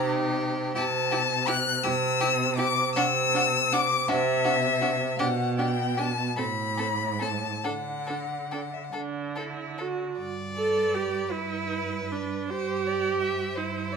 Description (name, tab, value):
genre	classical, slow romantic movement for string quartet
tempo	45-57 BPM (dotted quarters)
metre	6/8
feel	rubato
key	G major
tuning	A4 = 435 Hz
part	warm violin	melody	0.0-14.0 s	B4 to F#6	-28 LUFS	left 7 dB	none
part	clear violin	second line	0.0-14.0 s	F#4 to E5	-33 LUFS	left 2 dB	none
part	rich viola	accompaniment	0.0-14.0 s	C4 to A4	-30 LUFS	right 4 dB	none
part	warm cello	bass	0.0-14.0 s	G2 to D3	-30 LUFS	right 4 dB	none
room	light reverb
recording	minimal, uncompressed stereo recording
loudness	-24 LUFS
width	side -5 dB against mid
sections	0.0-10.2 A section; 10.2-14.0 B section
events	none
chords	0.0 Cm; 0.8 Am/C; 3.0 D7(no3)/C; 5.2 G/B; 6.4 Am; 7.6 D; 10.2 G; 12.5 Cadd9/G